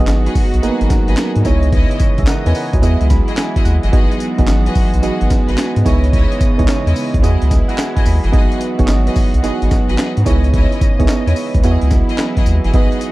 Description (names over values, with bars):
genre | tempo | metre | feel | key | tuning
R&B, new jack swing | 109 BPM | 4/4 | swing 66% on 16ths | G# minor | A4 = 440 Hz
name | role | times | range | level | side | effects
soft electric-piano-like synth keys | accompaniment | 0.0-13.1 s | A#3 to B5 | -20 LUFS | right 4 dB | chorus
warm studio string section | sustained chords | 0.0-13.1 s | C#3 to D#5 | -24 LUFS | equal | none
round analog bass | bass | 0.0-12.9 s | F#1 to G#2 | -14 LUFS | equal | none
breakbeat sampler-style drum kit | drums | 0.1-13.1 s | handclaps, hi-hat, kick drum, snare drum, tambourine | -15 LUFS | equal | none
clear studio string section | stabs | 0.3-13.0 s | E4 to D#5 | -26 LUFS | left 3 dB | none
room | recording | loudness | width
digital ambience | dark, warm production | -12 LUFS | side -18 dB against mid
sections
0.0-13.1 A section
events
synth keys fill 2.8-3.9, 7.2-8.3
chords
0.0 G#m7; 1.5 C#m9; 2.8 Emaj9; 3.9 G#m7; 5.9 C#m9; 7.2 Emaj9; 8.3 G#m7; 10.3 C#m9; 11.6 Emaj9